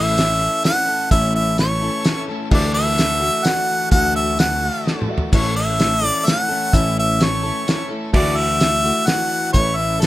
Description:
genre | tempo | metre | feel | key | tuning
folk rock and heartland rock | 128 BPM | 3/4 | straight | A major | A4 = 440 Hz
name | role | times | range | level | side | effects
bright harmonica | melody | 0.0-10.1 s | A4 to F#5 | -19 LUFS | equal | none
picked plugged-in steel-string acoustic guitar | accompaniment | 0.0-10.1 s | A2 to B4 | -26 LUFS | left 4 dB | none
warm upright piano | accompaniment | 0.0-10.1 s | F#4 to E5 | -34 LUFS | right 2 dB | none
bright tonewheel organ | sustained chords | 0.0-10.1 s | E4 to E5 | -35 LUFS | equal | none
overdriven electric guitar | riff | 0.0-10.1 s | A2 to A4 | -30 LUFS | equal | none
picked electric bass | bass | 0.0-10.1 s | A1 to D2 | -23 LUFS | equal | none
cloth-damped thuddy drum kit | drums | 0.2-10.1 s | crash cymbal, hi-hat, kick drum, snare drum, toms | -19 LUFS | equal | none
room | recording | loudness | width
light reverb | rough home demo mix | -15 LUFS | side -16 dB against mid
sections
0.0-10.1 A section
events
drum fill 4.9-5.3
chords
0.0 A; 2.5 Dadd9; 5.3 A; 8.1 Dadd9; 9.5 Aadd9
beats
0.18 0.65 | 1.11 1.58 2.05 | 2.52 2.99 3.46 | 3.92 4.39 4.86 | 5.33 5.80 6.26 | 6.73 7.20 7.67 | 8.14 8.61 9.08 | 9.54 10.02

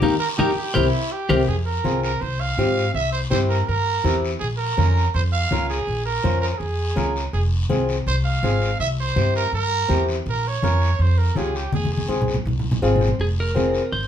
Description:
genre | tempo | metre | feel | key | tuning
latin, cumbia | 164 BPM | 4/4 | straight | F harmonic minor | A4 = 439 Hz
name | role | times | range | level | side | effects
clean electric guitar | melody | 0.0-1.4, 13.2-14.1 s | Eb4 to C5 | -25 LUFS | equal | spring reverb
flamenco guitar | accompaniment | 0.0-13.8 s | Bb3 to F5 | -23 LUFS | left 2 dB | none
upright bass | bass | 0.0-14.1 s | F1 to Ab2 | -22 LUFS | equal | none
congas | percussion | 0.0-14.1 s | none | -27 LUFS | left 1 dB | none
guiro | percussion | 0.0-14.1 s | none | -35 LUFS | left 3 dB | none
growling trumpet | second line | 0.2-12.3 s | E4 to F5 | -25 LUFS | right 4 dB | none
room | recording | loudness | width
wet studio ambience, RT60 0.5 s | band playing live in one room | -19 LUFS | side -9 dB against mid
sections
0.0-1.5 A section; 1.5-13.2 B section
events
band accent 0.0-1.5; drum fill 0.6-1.5, 11.7-13.2; trumpet solo 1.5-13.2; nylon-string guitar fill 12.6-13.2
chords
0.0 Eb; 0.8 C7; 1.5 Fm; 2.9 C7; 4.4 Bbm; 7.3 Fm; 8.8 C7; 10.3 Bbm; 11.7 Fm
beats
| 0.02 0.39 0.75 1.12 | 1.48 1.85 2.21 2.58 | 2.95 3.31 3.68 4.04 | 4.41 4.78 5.14 5.51 | 5.88 6.24 6.61 6.97 | 7.34 7.71 8.07 8.44 | 8.80 9.17 9.54 9.90 | 10.27 10.63 11.00 11.37 | 11.73 12.10 12.46 12.83 | 13.20 13.56 13.93

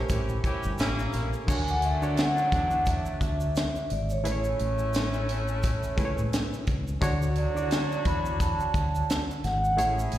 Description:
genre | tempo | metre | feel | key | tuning
lush 1970s-style soul | 87 BPM | 4/4 | swing 58% on 16ths | unclear | A4 = 438 Hz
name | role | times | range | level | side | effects
barky reed electric piano | accompaniment | 0.0-10.2 s | D3 to D5 | -33 LUFS | equal | overdrive, medium tremolo, slapback echo
clear horn section | stabs | 0.0-10.2 s | F#3 to G#4 | -35 LUFS | equal | slapback echo
fingered electric bass | bass | 0.0-10.2 s | G1 to A2 | -29 LUFS | equal | none
tight funk drum kit | drums | 0.1-10.2 s | crash cymbal, hi-hat, kick drum, snare drum | -29 LUFS | equal | none
tube shaker | percussion | 0.1-10.2 s | none | -49 LUFS | right 2 dB | none
vibraphone with medium mallets | texture | 0.8-1.8 s | A4 to Bb4 | -45 LUFS | right 4 dB | none
vibraphone with soft mallets | melody | 1.5-10.2 s | C#5 to B5 | -29 LUFS | right 1 dB | slapback echo
room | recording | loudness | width
light reverb, studio ambience | live gig heard through the venue's PA, recital hall reverb | -24 LUFS | side -13 dB against mid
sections
0.0-1.5 A section; 1.5-10.2 B section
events
none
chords
0.0 A7b9; 1.5 Dmaj7; 4.2 Amaj7; 7.0 Dmaj7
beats
0.10 0.79 | 1.48 2.17 2.87 3.56 | 4.25 4.94 5.63 6.32 | 7.01 7.71 8.40 9.09 | 9.78

